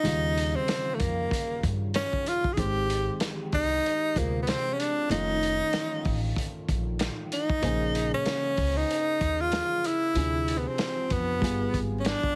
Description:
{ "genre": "hip hop, jazz-hop", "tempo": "95 BPM", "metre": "4/4", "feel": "swing 57% on 16ths", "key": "unclear", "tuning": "A4 = 440 Hz", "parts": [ { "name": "breathy tenor saxophone", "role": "melody", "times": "0.0-12.4 s", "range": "A3 to Ab4", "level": "-30 LUFS", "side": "equal", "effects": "plate reverb" }, { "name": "dark upright piano", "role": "accompaniment", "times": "0.0-12.4 s", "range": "C3 to C5", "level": "-36 LUFS", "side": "equal", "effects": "none" }, { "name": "upright bass", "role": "bass", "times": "0.0-12.1 s", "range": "F1 to G2", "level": "-33 LUFS", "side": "equal", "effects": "none" }, { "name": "vintage drum kit", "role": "drums", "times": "0.0-12.4 s", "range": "hi-hat, kick drum, snare drum", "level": "-34 LUFS", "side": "equal", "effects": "none" } ], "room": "light reverb", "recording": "heavily compressed radio sound, multiband compression", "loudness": "-28 LUFS", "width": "mono", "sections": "0.0-12.4 A section", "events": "none", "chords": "0.1 Eb9; 2.6 Abmaj7; 5.1 F7b13; 7.6 Bbm9; 10.2 Dm7b5; 11.4 G7b9" }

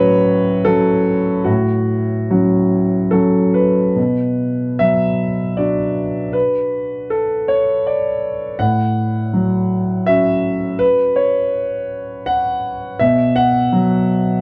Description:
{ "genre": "neoclassical minimalist piano", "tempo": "69-85 BPM", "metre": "3/4", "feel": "rubato", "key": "B minor", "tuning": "A4 = 441 Hz", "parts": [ { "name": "warm concert grand piano", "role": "solo", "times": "0.0-14.4 s", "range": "A2 to F#5", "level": "-17 LUFS", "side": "equal", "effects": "none" } ], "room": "light reverb", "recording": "dark, warm production", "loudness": "-17 LUFS", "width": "mono", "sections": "0.0-4.0 A section; 4.0-14.4 B section", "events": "none", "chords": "0.0 F#m/A; 4.0 Bm; 8.6 F#m/A; 13.0 B5" }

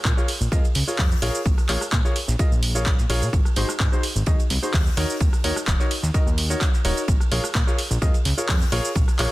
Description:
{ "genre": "piano house", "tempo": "128 BPM", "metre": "4/4", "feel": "straight", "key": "Bb minor", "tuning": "A4 = 440 Hz", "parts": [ { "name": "fat analog bass", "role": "bass", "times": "0.1-9.3 s", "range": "Eb1 to Bb2", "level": "-24 LUFS", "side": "equal", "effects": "sidechain pumping" }, { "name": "damped 70s drum kit", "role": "drums", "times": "0.1-9.3 s", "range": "hi-hat, ride cymbal, snare drum", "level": "-37 LUFS", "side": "right 3 dB", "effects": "sidechain pumping on cymbals, high-pass filter on cymbals, sidechain pumping on hats, high-pass filter on hats, high-pass filter on snare, high-pass filter on room" }, { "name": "electronic kick drum", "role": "drums", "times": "0.1-9.1 s", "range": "none", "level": "-21 LUFS", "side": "equal", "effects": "overdrive" }, { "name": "punchy analog drum machine", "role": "drums", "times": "0.1-9.3 s", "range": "handclaps, hi-hat, rim click, shaker", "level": "-27 LUFS", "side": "right 1 dB", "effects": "none" }, { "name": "warm grand piano", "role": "riff", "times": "0.2-9.3 s", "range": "Eb4 to Eb5", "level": "-28 LUFS", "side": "left 1 dB", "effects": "sidechain pumping, low-pass filter, digital delay" } ], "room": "small room ambience", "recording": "dense, heavily limited modern master", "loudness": "-19 LUFS", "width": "side -18 dB against mid", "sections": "0.0-9.3 A section", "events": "none", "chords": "0.0 Bbm7; 3.3 Ab7; 5.0 Ebm7; 7.1 Bbm7" }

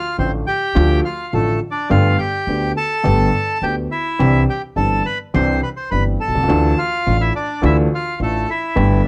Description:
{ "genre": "tango", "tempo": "105 BPM", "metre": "4/4", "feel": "rubato", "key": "unclear", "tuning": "A4 = 440 Hz", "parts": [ { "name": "bandoneon", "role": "melody", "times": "0.0-9.1 s", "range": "A3 to C6", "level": "-23 LUFS", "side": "equal", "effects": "none" }, { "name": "warm baby grand piano", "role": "accompaniment", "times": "0.2-9.0 s", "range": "G1 to G4", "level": "-21 LUFS", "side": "equal", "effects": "none" }, { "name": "upright bass", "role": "bass", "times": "0.2-9.0 s", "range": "G1 to D2", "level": "-22 LUFS", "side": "equal", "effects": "none" } ], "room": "light reverb", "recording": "close, detailed microphones", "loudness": "-18 LUFS", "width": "mono", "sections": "0.0-9.1 A section", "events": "none", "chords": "0.0 Dm; 1.9 Gadd9; 4.2 Cadd9; 6.5 Dmadd9" }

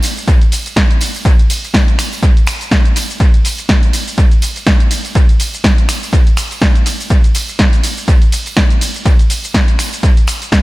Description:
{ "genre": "house", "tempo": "123 BPM", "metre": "4/4", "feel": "swing 56% on 16ths", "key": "none", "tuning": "none", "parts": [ { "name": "punchy analog drum machine", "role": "drums", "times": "0.0-10.6 s", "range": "finger snaps, hi-hat, ride cymbal, shaker, snare drum", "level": "-16 LUFS", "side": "equal", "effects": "dub echo" }, { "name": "tambourine", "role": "percussion", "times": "0.0-10.6 s", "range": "none", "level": "-27 LUFS", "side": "right 4 dB", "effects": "sidechain pumping on perc, dub echo" }, { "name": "electronic kick drum", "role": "drums", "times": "0.3-10.6 s", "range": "none", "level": "-10 LUFS", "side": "equal", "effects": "none" } ], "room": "little or no reverb", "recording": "echo-heavy mix", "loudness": "-10 LUFS", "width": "side -20 dB against mid", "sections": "0.0-10.6 A section", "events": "none", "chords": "none" }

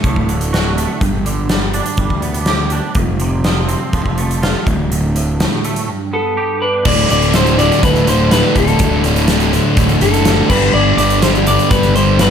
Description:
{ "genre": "quiet-loud alternative rock", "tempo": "123 BPM", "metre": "4/4", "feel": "straight", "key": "D mixolydian", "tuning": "A4 = 440 Hz", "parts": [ { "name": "twangy electric guitar", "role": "arpeggios", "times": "0.0-6.9 s", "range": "D2 to G4", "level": "-20 LUFS", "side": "right 4 dB", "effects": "ensemble chorus, plate reverb" }, { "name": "fuzz fingered electric bass", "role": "bass", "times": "0.0-12.3 s", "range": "D1 to D2", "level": "-18 LUFS", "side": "equal", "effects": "overdrive" }, { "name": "big rock drum kit", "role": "drums", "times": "0.0-12.3 s", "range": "crash cymbal, hi-hat, kick drum, snare drum", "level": "-17 LUFS", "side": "left 1 dB", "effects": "none" }, { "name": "electric guitar through a small old amp", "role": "melody", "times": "6.1-12.3 s", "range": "A4 to D5", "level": "-17 LUFS", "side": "left 1 dB", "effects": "plate reverb" }, { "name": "string machine, violas", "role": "sustained chords", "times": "6.8-12.3 s", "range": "F#3 to D5", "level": "-26 LUFS", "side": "equal", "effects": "none" }, { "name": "thick fuzz guitar", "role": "riff", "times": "6.9-12.3 s", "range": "D2 to G3", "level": "-17 LUFS", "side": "left 11 dB", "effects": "distortion" }, { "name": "thick fuzz guitar", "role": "riff", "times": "6.9-12.3 s", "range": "D2 to G3", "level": "-17 LUFS", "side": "right 10 dB", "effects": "distortion" } ], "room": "light reverb", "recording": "none", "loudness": "-12 LUFS", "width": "side -8 dB against mid", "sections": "0.0-6.9 A section; 6.9-12.3 B section", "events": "none", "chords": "0.0 D; 1.0 G; 3.0 F; 4.7 D5; 5.9 G; 6.9 Dadd9; 10.5 G" }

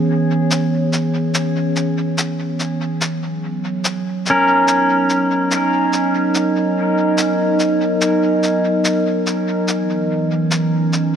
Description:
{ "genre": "ambient dub", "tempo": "72 BPM", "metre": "4/4", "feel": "straight", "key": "unclear", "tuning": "A4 = 438 Hz", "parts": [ { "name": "warbly tape-like pad", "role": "sustained chords", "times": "0.0-11.2 s", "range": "E3 to D#5", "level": "-17 LUFS", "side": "right 1 dB", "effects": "chorus, built-in reverb" }, { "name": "cabasa", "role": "drums", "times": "0.5-11.1 s", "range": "none", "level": "-23 LUFS", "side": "left 1 dB", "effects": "small room ambience, dub echo" }, { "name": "pedal steel guitar", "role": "arpeggios", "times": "4.3-7.1 s", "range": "C#4 to A#4", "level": "-20 LUFS", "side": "equal", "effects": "low-pass filter, dub echo" } ], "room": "wet huge ambient reverb, RT60 4.7 s", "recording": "none", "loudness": "-15 LUFS", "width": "side -8 dB against mid", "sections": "0.0-11.2 A section", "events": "filter sweep on pedal steel guitar 0.0-11.2", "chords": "0.0 C#m7; 3.0 Bmaj7; 9.7 C#m7" }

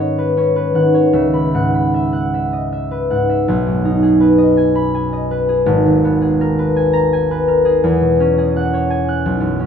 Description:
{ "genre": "classical, solo harp piece", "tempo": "75-88 BPM", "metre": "3/4", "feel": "rubato", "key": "B major", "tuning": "A4 = 440 Hz", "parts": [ { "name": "concert harp", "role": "solo", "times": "0.0-9.7 s", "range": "G#1 to F#6", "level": "-13 LUFS", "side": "equal", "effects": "none" } ], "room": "little or no reverb", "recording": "close, detailed microphones", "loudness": "-13 LUFS", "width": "side -7 dB against mid", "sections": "0.0-3.5 A section; 3.5-9.7 B section", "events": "none", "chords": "0.0 G#m7; 1.2 C#m11; 3.5 B6; 5.7 G#madd9; 7.8 E69" }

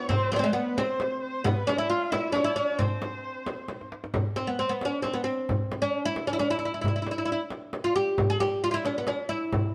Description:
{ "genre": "Persian modal ensemble", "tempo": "89 BPM (dotted quarters)", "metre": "6/8", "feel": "straight", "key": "C dastgah chahargah", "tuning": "A4 = 440 Hz", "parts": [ { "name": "oud", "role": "melody", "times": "0.0-9.7 s", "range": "Ab3+45c to Ab4+45c", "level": "-29 LUFS", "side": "equal", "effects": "none" }, { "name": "rich kamancheh", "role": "second line", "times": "0.0-3.9 s", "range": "B4 to F5", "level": "-37 LUFS", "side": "equal", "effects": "none" }, { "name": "frame drum", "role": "percussion", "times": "0.1-9.6 s", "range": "none", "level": "-36 LUFS", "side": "equal", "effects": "none" }, { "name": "tombak", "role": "percussion", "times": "0.1-9.6 s", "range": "none", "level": "-33 LUFS", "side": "equal", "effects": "none" } ], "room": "moderate stone room reverb, RT60 1.0 s", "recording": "band playing live in one room", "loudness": "-28 LUFS", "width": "mono", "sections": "0.0-4.1 A section; 4.1-9.7 B section", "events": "drum fill 3.7-4.1", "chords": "none" }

